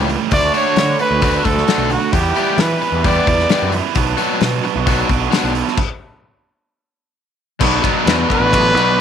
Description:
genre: indie rock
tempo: 132 BPM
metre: 4/4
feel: straight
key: unclear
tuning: A4 = 440 Hz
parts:
  - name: crunchy overdriven guitar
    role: riff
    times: 0.0-9.0 s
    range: B2 to B4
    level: -21 LUFS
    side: left 12 dB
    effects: none
  - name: overdriven electric guitar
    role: riff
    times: 0.0-9.0 s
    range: A2 to G4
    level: -19 LUFS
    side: right 13 dB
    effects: wide subtle chorus
  - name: fuzz picked electric bass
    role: bass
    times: 0.0-9.0 s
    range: A1 to E3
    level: -20 LUFS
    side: equal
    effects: overdrive
  - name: loose indie drum kit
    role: drums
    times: 0.1-8.9 s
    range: crash cymbal, hi-hat, kick drum, ride cymbal, snare drum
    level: -20 LUFS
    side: left 3 dB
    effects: none
  - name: brilliant trumpet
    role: melody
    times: 0.3-3.7, 8.3-9.0 s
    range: F#4 to D5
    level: -17 LUFS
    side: equal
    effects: slapback echo
room: moderate spring reverb, RT60 1.3 s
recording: 1960s-style stereo with parts hard left and right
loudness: -13 LUFS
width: side -8 dB against mid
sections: 0.0-7.6 A section; 7.6-9.0 B section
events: stop 5.8-7.6; trumpet solo 7.6-9.0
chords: 0.3 D6; 2.1 Em7; 4.0 Bm; 5.8 N.C.; 7.6 Bm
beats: | 0.32 0.77 1.23 1.68 | 2.14 2.59 3.05 3.50 | 3.96 4.42 4.87 5.33 | 5.78 6.24 6.70 7.15 | 7.61 8.06 8.52 8.98

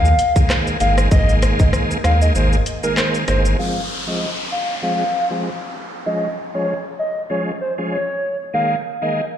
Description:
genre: dancehall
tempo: 97 BPM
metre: 4/4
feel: swing 56% on 16ths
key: F minor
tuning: A4 = 442 Hz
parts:
  - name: hollow clarinet-like synth lead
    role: melody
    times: 0.0-9.2 s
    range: Bb4 to F5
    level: -22 LUFS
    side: equal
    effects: chorus, low-pass filter, ping-pong delay
  - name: bright tonewheel organ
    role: accompaniment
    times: 0.0-9.2 s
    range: Eb3 to Ab4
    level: -23 LUFS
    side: right 1 dB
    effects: overdrive, chorus vibrato, stopped rotary speaker, sidechain pumping, low-pass filter
  - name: sub bass with octave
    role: bass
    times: 0.0-3.5 s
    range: G1 to Eb2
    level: -16 LUFS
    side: equal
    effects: none
  - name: island pop drum kit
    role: drums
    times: 0.1-3.6 s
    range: handclaps, hi-hat, kick drum, rim click, shaker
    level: -19 LUFS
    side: equal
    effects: none
  - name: downlifter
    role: sound effects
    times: 3.6-8.5 s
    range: none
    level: -29 LUFS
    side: left 1 dB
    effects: none
room: light reverb, digital ambience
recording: played on a big sound system in a bare room, large studio reverb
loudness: -16 LUFS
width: side -10 dB against mid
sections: 0.0-3.6 A section; 3.6-9.4 B section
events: break 2.4-3.6; filter sweep 3.6-9.4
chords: 0.0 Ebsus4; 3.6 Fm; 6.1 Db; 8.5 Ebsus4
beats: 0.50 | 1.11 1.73 2.35 2.97 | 3.59 4.21 4.83 5.44 | 6.06 6.68 7.30 7.92 | 8.54 9.16

